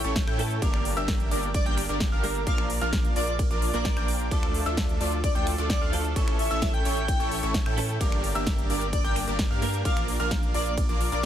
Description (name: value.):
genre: EDM, festival progressive house.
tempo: 130 BPM.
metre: 4/4.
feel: straight.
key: unclear.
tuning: A4 = 441 Hz.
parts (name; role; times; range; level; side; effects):
direct-recorded clean electric guitar; accompaniment; 0.0-11.2 s; G2 to Bb4; -35 LUFS; right 3 dB; ensemble chorus, sidechain pumping.
lush unison pad; sustained chords; 0.0-11.3 s; F4 to D6; -39 LUFS; equal; none.
bright grand piano; arpeggios; 0.0-11.3 s; C#6 to G6; -35 LUFS; left 1 dB; sidechain pumping, dub echo.
supersaw stab; riff; 0.0-11.3 s; A3 to G5; -32 LUFS; equal; wide subtle chorus, sidechain pumping.
saturated sub bass; bass; 0.0-11.3 s; G1 to A2; -31 LUFS; equal; sidechain pumping.
big-room dance drum kit; drums; 0.0-11.3 s; finger snaps, hi-hat, ride cymbal, snare drum; -34 LUFS; equal; overdrive.
electronic kick drum; drums; 0.2-10.9 s; none; -26 LUFS; equal; none.
airy dreamy lead; melody; 1.5-11.3 s; D5 to G5; -35 LUFS; left 1 dB; chorus, vintage 12-bit sampler grit, dub echo.
room: little or no reverb.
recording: none.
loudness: -23 LUFS.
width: side -10 dB against mid.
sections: 0.0-11.3 A section.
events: none.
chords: 0.0 A; 0.6 Gm; 2.5 Bb; 4.3 Dm; 6.2 A; 8.0 Gm; 9.9 Bb.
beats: 0.16 | 0.62 1.08 1.54 2.01 | 2.47 2.93 3.39 3.85 | 4.31 4.78 5.24 5.70 | 6.16 6.62 7.08 7.54 | 8.01 8.47 8.93 9.39 | 9.85 10.31 10.78 11.24.